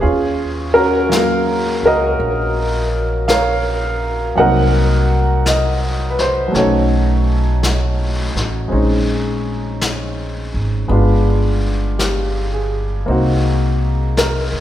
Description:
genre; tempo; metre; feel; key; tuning
jazz ballad; 55 BPM; 4/4; swing 67% on 8ths; unclear; A4 = 440 Hz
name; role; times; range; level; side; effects
clear upright piano; accompaniment; 0.0-14.6 s; Gb3 to Gb5; -17 LUFS; equal; none
upright bass; bass; 0.0-14.6 s; G1 to Eb2; -18 LUFS; equal; none
vintage brush drum kit; drums; 0.0-14.6 s; brushed snare drum, hi-hat, snare drum; -25 LUFS; left 2 dB; none
room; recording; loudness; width
moderate concert hall reverb, RT60 2.3 s; recorded in a church or concert hall; -14 LUFS; side -12 dB against mid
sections
0.0-14.6 A section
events
none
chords
0.0 Ebm9; 4.4 Cm7b5; 6.5 B9; 8.7 Bbm11; 10.9 G7b9; 13.1 Cm7b5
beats
| 0.01 1.10 2.18 3.27 | 4.36 5.44 6.53 7.62 | 8.71 9.80 10.89 11.98 | 13.07 14.16

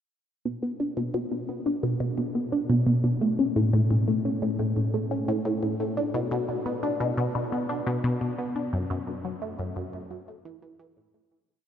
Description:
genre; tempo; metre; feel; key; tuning
ambient; 87 BPM; 4/4; straight; B minor; A4 = 440 Hz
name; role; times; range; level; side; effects
resonant blip pluck; solo; 0.5-11.4 s; F#2 to D4; -25 LUFS; equal; phaser, analog delay
room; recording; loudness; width
wet huge ambient reverb, RT60 8.0 s; dreamy mix soaked in reverb, nothing above 7.6 kHz; -25 LUFS; side -9 dB against mid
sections
0.5-11.5 A section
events
fade-out 7.8-11.5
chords
none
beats
| 0.46 1.15 1.83 2.52 | 3.21 3.90 4.59 5.28 | 5.97 6.66 7.35 8.04 | 8.73 9.42 10.11 10.80

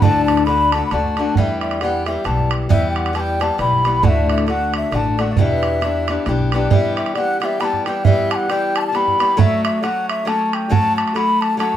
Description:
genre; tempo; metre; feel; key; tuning
celtic folk, Celtic waltz; 134 BPM; 3/4; swing 58% on 8ths; E dorian; A4 = 440 Hz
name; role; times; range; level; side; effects
mellow wooden flute; melody; 0.0-11.8 s; D5 to B5; -20 LUFS; left 1 dB; none
fingerpicked steel-string acoustic guitar; accompaniment; 0.0-11.8 s; D2 to G4; -20 LUFS; left 3 dB; none
upright bass; bass; 0.0-6.7 s; A1 to E2; -22 LUFS; equal; none
bodhran; percussion; 0.0-11.8 s; none; -21 LUFS; right 5 dB; none
room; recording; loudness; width
moderate studio reverb, RT60 0.8 s; band playing live in one room; -15 LUFS; side -11 dB against mid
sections
0.0-6.7 A section; 6.7-11.8 A section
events
none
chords
0.0 D; 1.4 Em; 4.0 D; 5.4 Em7; 6.7 Em; 9.4 F#m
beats
| 0.01 0.46 0.91 | 1.35 1.80 2.25 | 2.69 3.14 3.59 | 4.04 4.48 4.93 | 5.38 5.82 6.27 | 6.71 7.16 7.61 | 8.05 8.49 8.94 | 9.38 9.83 10.27 | 10.71 11.15 11.60

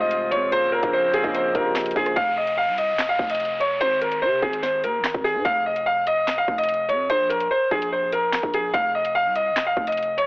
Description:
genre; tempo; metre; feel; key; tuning
hip hop, drill; 146 BPM; 4/4; half-time; F minor; A4 = 444 Hz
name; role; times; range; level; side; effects
clear concert grand piano; melody; 0.0-10.3 s; Ab4 to F5; -20 LUFS; equal; digital delay
mellow tine electric piano; accompaniment; 0.0-2.2 s; C3 to Eb5; -27 LUFS; right 1 dB; analog chorus
clear woodwind section; sustained chords; 0.0-2.1 s; Db3 to C5; -29 LUFS; equal; none
growling 808-style bass; bass; 0.0-10.3 s; Eb1 to C3; -34 LUFS; equal; none
drill drum kit; drums; 0.1-10.3 s; handclaps, hi-hat, kick drum, rim click, snare drum; -28 LUFS; equal; none
downlifter; sound effects; 2.2-5.5 s; none; -35 LUFS; equal; none
room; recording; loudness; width
light reverb; blown-out, overdriven recording, overdrive, telephone sound; -19 LUFS; side -24 dB against mid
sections
0.0-2.2 A section; 2.2-10.3 B section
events
none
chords
0.0 Fm; 0.5 Bbmadd9; 2.2 F5; 3.8 Ab; 5.5 Dbadd9/F (rootless); 7.1 Abadd9/Bb (rootless); 8.7 F5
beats
0.11 | 0.52 0.93 1.34 1.75 | 2.17 2.58 2.99 3.40 | 3.81 4.22 4.63 5.04 | 5.45 5.86 6.28 6.69 | 7.10 7.51 7.92 8.33 | 8.74 9.15 9.56 9.97

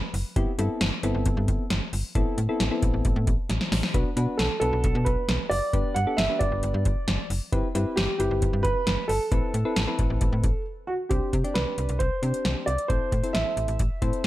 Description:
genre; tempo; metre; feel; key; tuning
synth-pop; 134 BPM; 4/4; straight; unclear; A4 = 437 Hz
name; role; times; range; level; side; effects
dark grand piano; melody; 0.0-0.1, 4.4-14.3 s; F#4 to F#5; -28 LUFS; right 2 dB; slapback echo
slap-like FM bass; bass; 0.1-14.3 s; F#1 to C3; -27 LUFS; equal; none
electro analog drum machine; drums; 0.1-14.3 s; hi-hat, kick drum, snare drum; -27 LUFS; equal; gated reverb
soft electric-piano-like synth keys; accompaniment; 0.4-14.3 s; B3 to D5; -30 LUFS; left 2 dB; chorus
room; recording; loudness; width
digital ambience; none; -23 LUFS; side -15 dB against mid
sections
0.0-11.1 A section; 11.1-14.3 B section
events
drum fill 3.5-3.9; break 10.7-11.1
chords
0.4 Cmaj7/G; 2.2 Amadd9; 3.9 Bm; 5.7 G; 7.5 Cmaj7/G; 9.3 Amadd9; 11.1 Csus2; 12.9 Am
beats
| 0.36 0.81 1.26 1.70 | 2.15 2.60 3.05 3.50 | 3.94 4.39 4.84 5.29 | 5.73 6.18 6.63 7.08 | 7.53 7.97 8.42 8.87 | 9.32 9.76 10.21 10.66 | 11.11 11.55 12.00 12.45 | 12.90 13.35 13.79 14.24

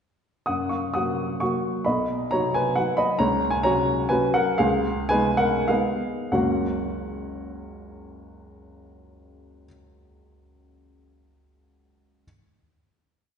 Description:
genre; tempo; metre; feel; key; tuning
classical, piano waltz; 88-142 BPM; 3/4; rubato; F# major; A4 = 440 Hz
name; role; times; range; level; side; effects
dark baby grand piano; solo; 0.5-12.3 s; F#1 to D#6; -22 LUFS; equal; none
room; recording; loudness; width
wet scoring stage reverb, RT60 1.6 s; heard from further back in the room, nothing above 10.7 kHz; -21 LUFS; side -7 dB against mid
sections
0.5-6.3 A section; 6.3-10.1 final chord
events
slowing down 2.5-6.3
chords
0.5 F#; 1.9 B; 3.2 F#/C#; 4.6 C#9; 6.3 F#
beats
| 0.48 0.95 1.41 | 1.87 2.32 2.77 | 3.20 3.64 4.11 | 4.60 5.11 5.69 | 6.34 6.97 7.61 | 8.22 8.84 9.49

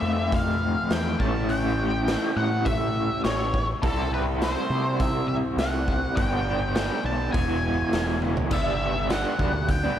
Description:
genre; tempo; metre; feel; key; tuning
psychedelic rock; 103 BPM; 4/4; straight; unclear; A4 = 440 Hz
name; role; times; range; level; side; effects
octave-fuzz lead guitar; melody; 0.0-10.0 s; A4 to A5; -29 LUFS; left 2 dB; wah, distortion, tape echo
raw garage guitar; riff; 0.0-10.0 s; G2 to F4; -27 LUFS; equal; overdrive, tremolo, tape echo
growling picked electric bass; bass; 0.0-9.9 s; E1 to C3; -28 LUFS; equal; overdrive
raw garage drum kit; drums; 0.3-9.8 s; crash cymbal, hi-hat, kick drum, snare drum, toms; -29 LUFS; equal; none
room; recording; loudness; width
light reverb, studio reverb; echo-heavy mix; -22 LUFS; side -10 dB against mid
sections
0.0-8.5 A section; 8.5-10.0 B section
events
drum fill 8.2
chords
0.0 F; 1.2 A; 3.8 C; 6.2 G; 7.3 E; 8.5 G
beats
0.33 0.91 | 1.50 2.08 2.66 3.25 | 3.83 4.42 5.00 5.59 | 6.17 6.76 7.34 7.93 | 8.52 9.10 9.69

